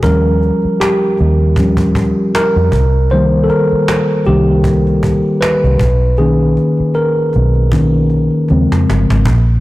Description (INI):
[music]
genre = R&B, neo-soul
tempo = 78 BPM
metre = 4/4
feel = swing 55% on 16ths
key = unclear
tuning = A4 = 440 Hz
[part]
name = mellow tine electric piano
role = accompaniment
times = 0.0-9.3 s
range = Db3 to C5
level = -12 LUFS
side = equal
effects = none
[part]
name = vintage muted fingered electric bass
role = bass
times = 0.0-9.6 s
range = G1 to F2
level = -13 LUFS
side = equal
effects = transformer saturation
[part]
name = cajon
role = drums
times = 0.0-9.5 s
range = none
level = -20 LUFS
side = equal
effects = none
[sound]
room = light reverb, studio ambience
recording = blown-out, overdriven recording, overdrive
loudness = -10 LUFS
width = side -18 dB against mid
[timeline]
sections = 0.0-9.3 A section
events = tine electric piano solo 0.0-9.3; drum fill 6.2-9.3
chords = 0.0 Eb9; 2.7 Cm7; 5.8 Bmaj9; 8.5 Eb13sus4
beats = | 0.03 0.80 1.56 2.33 | 3.10 3.87 4.64 5.41 | 6.18 6.95 7.72 8.49 | 9.26